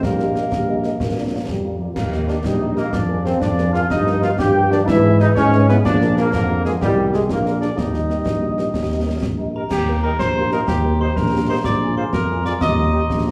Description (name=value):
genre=military-style march for wind band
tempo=124 BPM (dotted quarters)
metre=6/8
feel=straight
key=Eb major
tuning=A4 = 440 Hz
part: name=warm cornet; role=melody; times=0.0-13.3 s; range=G4 to G5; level=-29 LUFS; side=equal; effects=none
part: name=warm euphonium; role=second line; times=0.0-9.5 s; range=D3 to Bb3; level=-27 LUFS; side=equal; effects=none
part: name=warm trombone section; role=sustained chords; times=0.0-13.0 s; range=G3 to G4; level=-25 LUFS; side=equal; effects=none
part: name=mellow tuba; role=bass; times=0.0-13.3 s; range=Bb1 to G#2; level=-22 LUFS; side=equal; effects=none
part: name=concert snare drum, concert bass drum and clash cymbals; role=drums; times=0.0-13.3 s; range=none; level=-28 LUFS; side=equal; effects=none
part: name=mellow French horn section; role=accompaniment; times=0.2-13.3 s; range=Bb3 to Eb5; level=-32 LUFS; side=equal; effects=none
part: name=glockenspiel with hard plastic mallets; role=second line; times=9.6-13.3 s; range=G5 to Eb6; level=-27 LUFS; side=equal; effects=none
room=wet large studio reverb, RT60 1.3 s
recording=heard from further back in the room, small room ambience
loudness=-19 LUFS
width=mono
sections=0.0-9.7 A section; 9.7-13.3 B section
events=none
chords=0.0 Eb/Bb; 1.0 Bb; 2.0 Eb; 2.9 Bb7/F; 3.9 Eb/G; 4.9 E/G#; 5.8 Bb7; 6.8 Cm; 7.3 Bb7; 7.8 Eb; 11.7 Bb7; 12.6 Eb